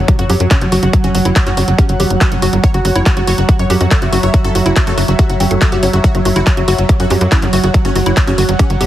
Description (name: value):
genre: psychedelic trance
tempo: 141 BPM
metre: 4/4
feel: straight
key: unclear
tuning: A4 = 440 Hz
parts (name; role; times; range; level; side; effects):
- evolving wavetable pad; sustained chords; 0.0-8.9 s; F#3; -21 LUFS; right 4 dB; chorus, built-in reverb, sidechain pumping
- tight sequencer bass; bass; 0.0-8.9 s; E1 to F#2; -15 LUFS; equal; none
- impact; sound effects; 0.0-0.9 s; none; barely audible; none; none
- airy breathy pad; texture; 0.0-8.9 s; F#4 to F#5; -22 LUFS; equal; chorus, sidechain pumping
- supersaw stab; melody; 0.1-8.8 s; F#3 to C#5; -21 LUFS; equal; phaser, sidechain pumping, ping-pong delay
- woody wave-folded pluck; riff; 0.1-8.9 s; E4 to G5; -21 LUFS; moving between left 4 dB and right 2 dB; chorus, auto-pan, sidechain pumping, ping-pong delay
- electronic kick drum; drums; 0.1-8.7 s; none; -13 LUFS; equal; overdrive
- techno drum kit; drums; 0.1-8.9 s; handclaps, hi-hat; -20 LUFS; equal; overdrive
room: light reverb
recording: heavily compressed radio sound, multiband compression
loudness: -10 LUFS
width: side -13 dB against mid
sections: 0.0-8.9 A section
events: impact 0.0-0.9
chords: 0.0 F#5